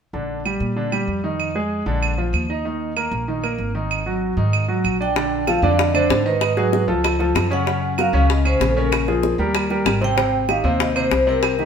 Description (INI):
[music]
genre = Afro-Cuban jazz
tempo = 191 BPM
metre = 4/4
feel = straight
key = unclear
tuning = A4 = 440 Hz
[part]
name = clear baby grand piano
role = accompaniment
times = 0.1-11.7 s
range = C3 to Eb5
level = -21 LUFS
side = equal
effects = none
[part]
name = upright bass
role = bass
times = 0.1-11.7 s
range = Ab1 to Bb2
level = -23 LUFS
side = equal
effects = none
[part]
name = claves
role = percussion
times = 0.5-11.6 s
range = none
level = -27 LUFS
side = right 8 dB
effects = none
[part]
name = vibraphone with medium mallets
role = melody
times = 5.0-11.7 s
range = A4 to G5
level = -22 LUFS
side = right 2 dB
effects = none
[part]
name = bongos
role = percussion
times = 5.2-11.7 s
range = none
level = -25 LUFS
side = left 4 dB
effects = none
[sound]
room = wet stone room reverb, RT60 1.0 s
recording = band playing live in one room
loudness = -17 LUFS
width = side -7 dB against mid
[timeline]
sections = 0.1-5.2 A section; 5.2-11.7 B section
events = none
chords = 0.1 Bb6; 1.4 Fm7; 2.0 Bb; 2.7 Eb5; 3.9 Absus2; 5.2 Bbadd9; 6.4 Abm7; 7.0 Dbaug; 7.7 Gb; 8.9 Bbm7; 9.5 Eb6; 10.2 Abmaj7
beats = | 0.14 0.45 0.77 1.08 | 1.40 1.71 2.02 2.34 | 2.65 2.97 3.28 3.59 | 3.91 4.22 4.54 4.85 | 5.16 5.47 5.79 6.10 | 6.42 6.73 7.04 7.35 | 7.67 7.98 8.29 8.61 | 8.92 9.23 9.55 9.86 | 10.17 10.49 10.80 11.11 | 11.43